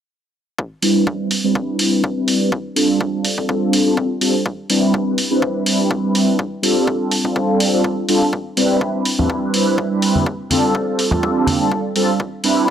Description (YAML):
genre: filtered disco house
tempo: 124 BPM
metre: 4/4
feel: swing 54% on 16ths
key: C major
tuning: A4 = 440 Hz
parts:
  - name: electronic kick drum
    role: drums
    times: 0.6-12.7 s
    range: none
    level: -24 LUFS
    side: left 1 dB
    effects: high-pass filter on kick
  - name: mellow synth brass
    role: accompaniment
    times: 0.8-12.7 s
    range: G3 to B4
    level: -16 LUFS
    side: equal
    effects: chorus, phaser, sidechain pumping, low-pass filter
  - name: electronic hi-hat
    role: drums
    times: 0.8-12.5 s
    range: none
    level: -21 LUFS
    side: right 1 dB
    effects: sidechain pumping on hats
  - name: tambourine and congas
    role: percussion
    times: 8.3-12.7 s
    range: none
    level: -21 LUFS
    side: equal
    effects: sidechain pumping on perc, low-pass filter on perc
room: moderate plate reverb, RT60 1.5 s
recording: none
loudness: -15 LUFS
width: side -9 dB against mid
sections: 0.6-12.7 A section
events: filter sweep 0.6-12.7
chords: 0.6 Cmaj7; 2.5 G9sus4; 4.5 Cmaj7; 6.4 G9sus4; 8.3 Cmaj7; 10.3 G9sus4; 12.2 Cmaj7